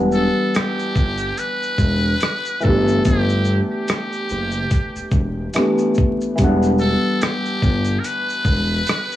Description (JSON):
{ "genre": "lo-fi hip hop", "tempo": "72 BPM", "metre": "4/4", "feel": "swing 56% on 16ths", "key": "E minor", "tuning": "A4 = 439 Hz", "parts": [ { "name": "felt-muted upright piano", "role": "accompaniment", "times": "0.0-9.2 s", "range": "E3 to F#5", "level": "-21 LUFS", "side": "left 1 dB", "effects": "low-pass filter" }, { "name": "smooth gliding synth bass", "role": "bass", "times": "0.0-8.8 s", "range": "E1 to G1", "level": "-20 LUFS", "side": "equal", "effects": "none" }, { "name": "trumpet with metal mute", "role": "melody", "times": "0.1-9.2 s", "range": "G4 to B4", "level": "-23 LUFS", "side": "equal", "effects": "low-pass filter, analog delay" }, { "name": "dusty soul sampler-style drum kit", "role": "drums", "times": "0.1-9.2 s", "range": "hi-hat, kick drum, rim click, shaker", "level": "-21 LUFS", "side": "equal", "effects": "none" } ], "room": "little or no reverb", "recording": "dry, gritty hardware recording, vinyl crackle, small room ambience", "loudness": "-16 LUFS", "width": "side -13 dB against mid", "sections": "0.0-9.2 A section", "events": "none", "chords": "0.0 Em7; 2.6 G6; 6.4 Em7" }